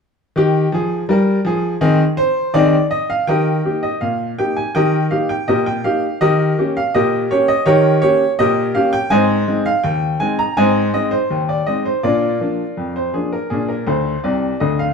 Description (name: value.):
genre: ragtime piano.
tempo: 82 BPM.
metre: 2/4.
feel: straight.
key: Eb major.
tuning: A4 = 439 Hz.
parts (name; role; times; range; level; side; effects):
clear upright piano; solo; 0.4-14.9 s; C2 to Bb5; -14 LUFS; equal; none.
room: wet studio reverb, RT60 0.9 s.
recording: heard from further back in the room.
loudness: -14 LUFS.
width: side -5 dB against mid.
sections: 0.4-3.3 A section; 3.3-14.9 B section.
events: upright piano fill 13.9-14.9.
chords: 0.4 Eb; 1.8 Ab/Eb; 3.3 Eb; 6.2 Eb7; 9.1 Ab; 12.0 Bb.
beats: | 0.35 1.08 | 1.81 2.54 | 3.28 4.01 | 4.75 5.47 | 6.21 6.94 | 7.67 8.39 | 9.12 9.85 | 10.57 11.30 | 12.04 12.77 | 13.51 14.24.